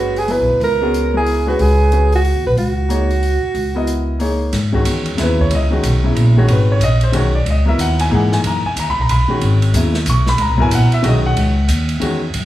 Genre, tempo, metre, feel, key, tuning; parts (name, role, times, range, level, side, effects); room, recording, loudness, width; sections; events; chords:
modal jazz; 184 BPM; 3/4; swing 63% on 8ths; C# dorian; A4 = 442 Hz
breathy alto saxophone; melody; 0.0-4.2 s; F#4 to B4; -18 LUFS; right 3 dB
warm grand piano; accompaniment; 0.0-12.2 s; C#3 to C#6; -18 LUFS; left 2 dB
upright bass; bass; 0.0-12.4 s; F#1 to G#2; -15 LUFS; equal
open jazz drum kit; drums; 0.2-12.4 s; hi-hat, kick drum, ride cymbal, snare drum; -26 LUFS; right 2 dB
light reverb; studio reverb; -13 LUFS; side -14 dB against mid
0.0-4.5 A section; 4.5-12.4 B section
0.0 C#9sus4